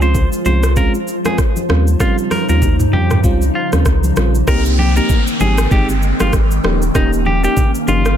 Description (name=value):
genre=afrobeats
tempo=97 BPM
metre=4/4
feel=swing 58% on 16ths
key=unclear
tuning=A4 = 440 Hz
part: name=clean electric guitar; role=melody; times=0.0-8.1 s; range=Eb4 to C5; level=-22 LUFS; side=equal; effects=digital delay, plate reverb
part: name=bell-like FM electric piano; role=accompaniment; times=0.0-8.1 s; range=G3 to G4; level=-21 LUFS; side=right 2 dB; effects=chorus, plate reverb
part: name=glassy FM pad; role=sustained chords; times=0.0-8.2 s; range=Db3 to G5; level=-21 LUFS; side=left 1 dB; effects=ensemble chorus, built-in reverb
part: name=warm sub bass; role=bass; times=0.0-8.2 s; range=Eb1 to F2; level=-15 LUFS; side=equal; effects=none
part: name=afro-pop drum kit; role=drums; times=0.0-8.2 s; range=hi-hat, kick drum, rim click, shaker, toms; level=-17 LUFS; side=equal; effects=none
part: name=congas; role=percussion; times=0.1-8.0 s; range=none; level=-25 LUFS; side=left 4 dB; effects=none
part: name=downlifter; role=sound effects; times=4.5-8.2 s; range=none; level=-26 LUFS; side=equal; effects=none
room=little or no reverb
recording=dense, heavily limited modern master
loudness=-12 LUFS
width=side -10 dB against mid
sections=0.0-4.5 A section; 4.5-8.2 B section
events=none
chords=0.0 Dbmaj7; 1.7 Eb13; 4.5 Cm7; 5.4 Abmaj7; 6.6 Eb7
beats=0.15 0.76 1.38 | 2.00 2.62 3.24 3.86 | 4.47 5.09 5.71 6.33 | 6.95 7.57